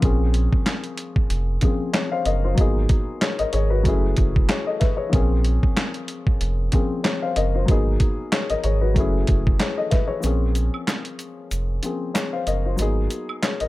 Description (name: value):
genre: hip hop, boom-bap hip-hop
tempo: 94 BPM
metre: 4/4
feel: swing 56% on 16ths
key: unclear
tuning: A4 = 440 Hz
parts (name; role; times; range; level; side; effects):
- dark upright piano; accompaniment; 0.0-13.7 s; F3 to F5; -25 LUFS; left 4 dB; cassette tape, high-pass filter, low-pass filter
- sub bass with octave; bass; 0.0-13.7 s; F1 to Bb1; -22 LUFS; right 1 dB; none
- boom bap sampler-style drum kit; drums; 0.0-13.7 s; handclaps, hi-hat, kick drum, snare drum; -21 LUFS; equal; none
- tube shaker and woodblock; percussion; 10.2-13.6 s; none; -37 LUFS; right 4 dB; none
room: small room ambience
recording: none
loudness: -19 LUFS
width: side -18 dB against mid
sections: 0.0-10.2 A section; 10.2-13.7 A section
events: break 10.2-13.7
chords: 0.0 Bbm9; 2.6 Abm9; 3.9 Gbm9; 5.1 Bbm9; 7.7 Abm9; 9.0 Gbm9; 10.2 Bbm9; 12.8 Abm9